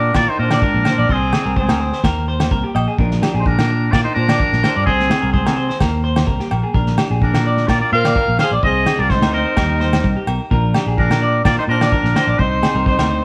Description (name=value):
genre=highlife guitar band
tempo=128 BPM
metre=4/4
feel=straight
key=Bb mixolydian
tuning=A4 = 440 Hz
part: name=trumpet with straight mute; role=melody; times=0.0-13.2 s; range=Ab4 to F5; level=-22 LUFS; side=equal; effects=none
part: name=bright alto saxophone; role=second line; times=0.0-13.2 s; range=C4 to Bb4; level=-27 LUFS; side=equal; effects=none
part: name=clean electric guitar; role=accompaniment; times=0.0-13.2 s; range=Ab2 to Bb4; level=-29 LUFS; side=equal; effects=none
part: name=semi-hollow electric guitar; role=arpeggios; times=0.0-13.2 s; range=G4 to Eb5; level=-26 LUFS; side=equal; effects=none
part: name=fingered electric bass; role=bass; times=0.0-13.2 s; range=Bb1 to C3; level=-22 LUFS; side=equal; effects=none
part: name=cloth-damped thuddy drum kit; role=drums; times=0.1-13.1 s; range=kick drum, snare drum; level=-22 LUFS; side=equal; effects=none
part: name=agogo bells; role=percussion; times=0.1-13.1 s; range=none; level=-29 LUFS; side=equal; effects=none
room=moderate stone room reverb, RT60 1.2 s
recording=band playing live in one room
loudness=-16 LUFS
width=mono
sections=0.0-13.2 A section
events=none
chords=0.0 Bb; 1.1 Ab/C; 2.0 Eb; 3.0 Bb; 4.9 Ab/C; 5.8 Eb; 6.7 Bb; 8.6 Ab/C; 9.6 Eb; 10.5 Bb; 12.4 Ab/C